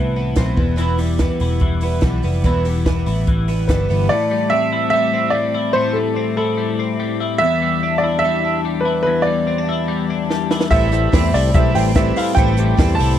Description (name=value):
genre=jangly indie pop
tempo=145 BPM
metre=4/4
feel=straight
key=A minor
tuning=A4 = 440 Hz
part: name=picked twelve-string acoustic guitar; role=accompaniment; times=0.0-4.1, 10.7-13.2 s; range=E2 to E4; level=-25 LUFS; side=right 8 dB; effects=none
part: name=twelve-string electric guitar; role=arpeggios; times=0.0-13.2 s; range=E2 to E4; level=-21 LUFS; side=left 5 dB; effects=analog chorus, tape echo
part: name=vintage muted picked electric bass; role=bass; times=0.0-4.1, 10.7-13.2 s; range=E1 to E2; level=-18 LUFS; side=equal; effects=none
part: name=compact cocktail drum kit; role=drums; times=0.4-4.0, 10.3-13.1 s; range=hi-hat, kick drum, snare drum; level=-19 LUFS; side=equal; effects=none
part: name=warm upright piano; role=melody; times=3.7-13.2 s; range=A4 to A5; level=-19 LUFS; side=right 2 dB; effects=tape echo
part: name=combo organ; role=accompaniment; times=10.7-13.2 s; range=E4 to C5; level=-25 LUFS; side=left 10 dB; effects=none
room=little or no reverb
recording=dry, close 1970s-style studio recording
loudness=-15 LUFS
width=side -10 dB against mid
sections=0.0-4.1 A section; 4.1-13.2 B section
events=drum fill 10.3-10.7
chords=0.0 Amadd9; 0.6 Em; 4.1 Am7; 7.4 Em7; 10.7 Am7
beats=0.37 | 0.78 1.20 1.61 2.03 | 2.44 2.86 3.27 3.69 | 4.10 4.51 4.93 5.34 | 5.75 6.17 6.58 6.99 | 7.41 7.82 8.23 8.65 | 9.06 9.47 9.89 10.30 | 10.71 11.13 11.54 11.96 | 12.37 12.78